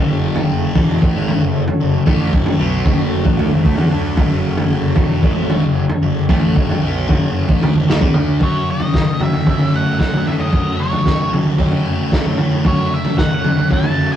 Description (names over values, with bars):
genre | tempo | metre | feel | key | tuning
psychedelic rock | 113 BPM | 4/4 | straight | F# minor | A4 = 440 Hz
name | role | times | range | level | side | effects
soft string machine | sustained chords | 0.0-14.2 s | F#3 to C#5 | -27 LUFS | right 1 dB | phaser, ensemble chorus
thick fuzz guitar | riff | 0.0-14.2 s | E2 to D4 | -20 LUFS | left 1 dB | distortion, phaser
fuzz picked electric bass | bass | 0.0-14.2 s | E1 to D#3 | -22 LUFS | left 1 dB | overdrive
vintage drum kit | drums | 0.4-14.0 s | kick drum, snare drum, toms | -16 LUFS | equal | none
octave-fuzz lead guitar | melody | 8.4-14.2 s | C#5 to A5 | -23 LUFS | right 1 dB | distortion, analog delay
room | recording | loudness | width
light reverb | rough rehearsal-room recording, tube saturation | -13 LUFS | side -10 dB against mid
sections
0.0-8.4 A section; 8.4-14.2 B section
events
none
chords
0.0 F#m